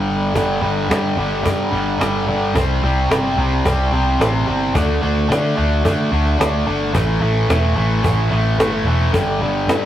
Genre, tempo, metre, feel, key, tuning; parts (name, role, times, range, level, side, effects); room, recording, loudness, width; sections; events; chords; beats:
hard rock; 109 BPM; 4/4; straight; A4 = 441 Hz
sludgy distorted guitar; riff; 0.0-9.9 s; G2 to D4; -18 LUFS; equal; overdrive
picked electric bass; bass; 0.0-9.9 s; E1 to D3; -20 LUFS; equal
cajon; drums; 0.4-9.8 s; -19 LUFS; equal
light reverb; rough rehearsal-room recording; -15 LUFS; side -12 dB against mid
0.3-9.9 A section
break 0.0-0.3
0.3 G5; 2.6 C5; 4.8 D5; 6.9 A5; 9.1 G5
| 0.35 0.90 1.45 2.00 | 2.55 3.10 3.65 4.20 | 4.75 5.30 5.85 6.40 | 6.95 7.50 8.05 8.60 | 9.14 9.69